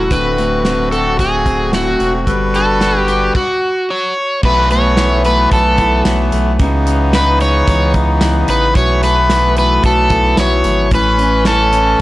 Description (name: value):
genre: dream pop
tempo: 111 BPM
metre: 4/4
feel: straight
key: unclear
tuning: A4 = 442 Hz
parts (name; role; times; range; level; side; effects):
- overdriven slide guitar; melody; 0.0-12.0 s; F#4 to C#5; -15 LUFS; equal; tape echo
- accordion; sustained chords; 0.0-12.0 s; C#3 to B4; -18 LUFS; left 1 dB; none
- clean electric guitar; arpeggios; 0.0-12.0 s; F#2 to B4; -20 LUFS; left 1 dB; lush chorus, tape echo
- saturated sub bass; bass; 0.0-12.0 s; D1 to C#2; -17 LUFS; equal; none
- loose indie drum kit; drums; 0.1-11.9 s; crash cymbal, hi-hat, kick drum, snare drum, tambourine; -18 LUFS; right 1 dB; none
room: little or no reverb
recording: dry, gritty hardware recording, cassette tape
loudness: -11 LUFS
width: side -17 dB against mid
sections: 0.0-4.4 A section; 4.4-12.0 B section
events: stop 3.3-4.4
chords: 0.1 D7; 2.3 Gmaj9; 3.3 N.C.; 4.4 B7sus4; 6.6 C#m9; 8.8 B7sus4; 10.9 A